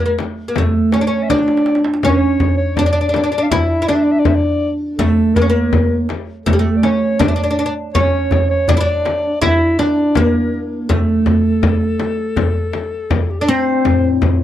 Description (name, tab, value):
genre	Arabic maqam ensemble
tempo	81 BPM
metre	4/4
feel	straight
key	A maqam hijaz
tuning	A4 = 440 Hz
part	oud	melody	0.0-14.2 s	G3 to E4	-16 LUFS	right 1 dB	none
part	breathy clarinet	second line	0.0-14.2 s	G4 to F5	-22 LUFS	left 4 dB	none
part	darbuka	percussion	0.2-14.4 s	none	-19 LUFS	right 1 dB	none
part	frame drum	percussion	0.2-14.4 s	none	-21 LUFS	left 5 dB	none
part	mellow duduk	drone	13.9-14.4 s	A2	-24 LUFS	equal	stereo widening
room	moderate booth ambience, RT60 0.2 s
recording	dry, close 1970s-style studio recording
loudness	-13 LUFS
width	side -12 dB against mid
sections	0.0-13.8 A section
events	drum fill 1.3-2.0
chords	none